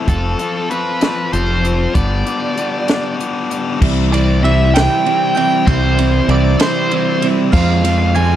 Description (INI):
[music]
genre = indie rock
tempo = 64 BPM (dotted quarters)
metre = 6/8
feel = straight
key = C major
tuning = A4 = 437 Hz
[part]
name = thick fuzz guitar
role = riff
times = 0.0-8.4 s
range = F3 to A4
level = -19 LUFS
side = left 6 dB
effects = distortion
[part]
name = nasal lead guitar with a parked wah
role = melody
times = 0.1-8.4 s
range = A4 to Ab5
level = -19 LUFS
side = equal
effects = overdrive, plate reverb, analog delay
[part]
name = growling fingered electric bass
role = bass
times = 0.1-8.4 s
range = F1 to F2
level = -15 LUFS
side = equal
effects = overdrive
[part]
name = compact cocktail drum kit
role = drums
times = 0.1-8.3 s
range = crash cymbal, hi-hat, kick drum, ride cymbal, snare drum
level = -19 LUFS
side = equal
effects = none
[part]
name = clean electric guitar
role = riff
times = 3.8-8.4 s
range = C3 to F4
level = -19 LUFS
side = right 12 dB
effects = lush chorus
[part]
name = glassy synth bell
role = second line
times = 4.1-8.4 s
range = C6 to Ab6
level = -29 LUFS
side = right 5 dB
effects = chorus, plate reverb, analog delay
[sound]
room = light reverb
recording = dark, warm production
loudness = -13 LUFS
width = side -11 dB against mid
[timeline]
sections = 0.0-3.8 A section; 3.8-8.4 B section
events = none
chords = 0.1 F; 2.0 G; 3.8 C; 7.5 Fm